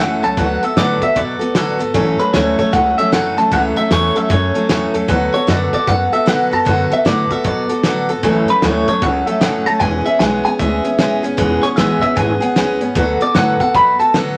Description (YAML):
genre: rockabilly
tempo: 152 BPM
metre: 4/4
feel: swing 64% on 8ths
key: A major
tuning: A4 = 441 Hz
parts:
  - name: clean electric guitar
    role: melody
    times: 0.0-14.1 s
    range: B4 to B5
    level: -19 LUFS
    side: equal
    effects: phaser
  - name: picked steel-string acoustic guitar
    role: accompaniment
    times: 0.0-14.4 s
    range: A2 to A4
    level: -19 LUFS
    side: equal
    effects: none
  - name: upright bass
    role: bass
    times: 0.0-14.4 s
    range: E1 to B2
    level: -24 LUFS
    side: equal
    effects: none
  - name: cloth-damped thuddy drum kit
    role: drums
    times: 0.2-14.3 s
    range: hi-hat, kick drum, snare drum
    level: -22 LUFS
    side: equal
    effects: none
room: moderate studio reverb, RT60 0.6 s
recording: vinyl crackle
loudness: -15 LUFS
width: mono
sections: 0.0-14.4 A section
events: none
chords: 0.4 D6; 1.9 A6; 5.1 D6; 8.2 A6; 9.8 E6; 13.0 D6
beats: | 0.37 0.76 1.16 1.55 | 1.94 2.33 2.73 3.12 | 3.51 3.91 4.30 4.69 | 5.08 5.48 5.87 6.26 | 6.66 7.05 7.45 7.84 | 8.23 8.63 9.02 9.41 | 9.81 10.20 10.60 10.99 | 11.38 11.78 12.17 12.56 | 12.96 13.35 13.74 14.14